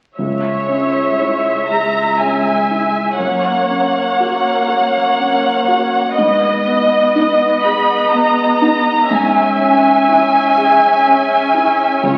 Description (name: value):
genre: cinematic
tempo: 61 BPM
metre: 3/4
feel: rubato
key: C# dorian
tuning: A4 = 437 Hz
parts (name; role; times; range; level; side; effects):
- warm symphonic violin section; melody; 0.2-12.2 s; C#5 to B5; -17 LUFS; equal; none
- dark concert grand piano; accompaniment; 0.2-12.2 s; C#2 to A#4; -22 LUFS; equal; none
- warm symphonic viola section; accompaniment; 0.2-12.2 s; G#3 to E5; -19 LUFS; equal; none
room: wet recital hall reverb, RT60 1.7 s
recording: very old 78 rpm record, vinyl crackle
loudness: -14 LUFS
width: mono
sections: 0.2-12.2 A section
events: none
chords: 0.2 C#m; 3.2 F#; 6.2 G#m; 9.1 C#m/G#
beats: | 0.17 1.18 2.19 | 3.19 4.19 5.18 | 6.17 7.15 8.13 | 9.11 10.08 11.05 | 12.02